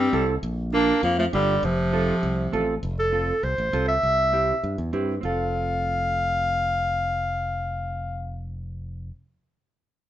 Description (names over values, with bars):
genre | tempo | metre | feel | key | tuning
latin | 200 BPM | 4/4 | straight | F major | A4 = 440 Hz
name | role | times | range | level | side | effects
warm clarinet | melody | 0.0-8.4 s | F3 to F5 | -24 LUFS | equal | none
edgy tenor saxophone | second line | 0.0-2.7 s | C3 to Bb3 | -26 LUFS | equal | none
modern bright fingered electric bass | bass | 0.0-9.1 s | F1 to G2 | -28 LUFS | equal | none
mellow electric guitar | accompaniment | 0.1-9.1 s | C4 to Bb4 | -29 LUFS | right 4 dB | none
room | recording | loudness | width
moderate studio reverb, RT60 0.7 s | band playing live in one room, nothing above 8.0 kHz | -22 LUFS | side -12 dB against mid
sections
0.0-2.8 A section; 2.8-5.2 B section; 5.2-7.6 C section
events
none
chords
0.4 Bb; 1.6 F; 4.0 C; 5.2 F